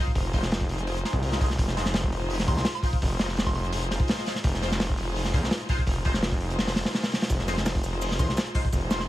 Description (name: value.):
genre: drum and bass, jungle.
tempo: 168 BPM.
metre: 4/4.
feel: straight.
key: F minor.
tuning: A4 = 443 Hz.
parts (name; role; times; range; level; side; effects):
warm studio string section; sustained chords; 0.0-9.1 s; Eb4 to C5; -34 LUFS; left 1 dB; none.
band-passed chord stab; stabs; 0.0-9.0 s; Ab3 to C5; -37 LUFS; left 1 dB; phaser, ensemble chorus, dub echo.
crunchy breakbeat drum kit; drums; 0.1-9.1 s; hi-hat, kick drum, snare drum; -26 LUFS; equal; none.
detuned saw bass; bass; 0.2-9.1 s; F1 to F2; -29 LUFS; equal; none.
soft synth bell; melody; 2.5-3.6, 8.2-9.1 s; C6; -37 LUFS; right 1 dB; chorus, vintage 12-bit sampler grit, dub echo.
breakbeat sampler-style drum kit; drums; 7.3-9.1 s; hi-hat, shaker, snare drum; -40 LUFS; right 1 dB; high-pass filter on perc, high-pass filter on snare, high-pass filter on hats.
room: small room ambience.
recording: vinyl crackle.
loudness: -24 LUFS.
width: side -15 dB against mid.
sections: 0.0-9.1 A section.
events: none.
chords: 0.0 Fm7.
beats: | 0.16 0.52 0.87 1.23 | 1.59 1.94 2.30 2.66 | 3.02 3.37 3.73 4.09 | 4.44 4.80 5.16 5.51 | 5.87 6.23 6.59 6.94 | 7.30 7.66 8.02 8.37 | 8.73.